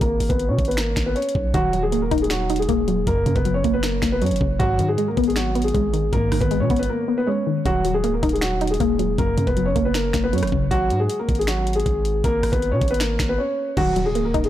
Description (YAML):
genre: hip hop, trap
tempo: 157 BPM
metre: 4/4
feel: half-time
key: unclear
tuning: A4 = 440 Hz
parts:
  - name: dark concert grand piano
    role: melody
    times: 0.0-14.5 s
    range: F#3 to C#5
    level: -23 LUFS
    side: equal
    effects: low-pass filter, ping-pong delay
  - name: long sustained 808-style bass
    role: bass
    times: 0.0-14.5 s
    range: C#1 to B2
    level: -24 LUFS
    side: equal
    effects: none
  - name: trap drum kit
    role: drums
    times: 0.0-14.5 s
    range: crash cymbal, finger snaps, hi-hat, kick drum, rim click, snare drum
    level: -25 LUFS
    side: equal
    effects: none
  - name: soft round pluck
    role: accompaniment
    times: 1.5-10.7, 13.8-14.5 s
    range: F#2 to D#4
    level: -23 LUFS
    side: left 1 dB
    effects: chorus, low-pass filter
  - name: impact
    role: sound effects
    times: 13.8-14.5 s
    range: none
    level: -33 LUFS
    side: equal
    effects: none
room: little or no reverb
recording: blown-out, overdriven recording, overdrive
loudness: -18 LUFS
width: side -12 dB against mid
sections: 0.0-13.8 A section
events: filter sweep 0.0-1.5; break 6.9-7.7, 13.4-13.8; impact 13.8-14.5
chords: 0.0 G#m; 1.5 D#m; 3.1 F#; 4.6 G#m; 7.7 D#m; 9.2 F#; 10.7 G#m; 13.8 D#m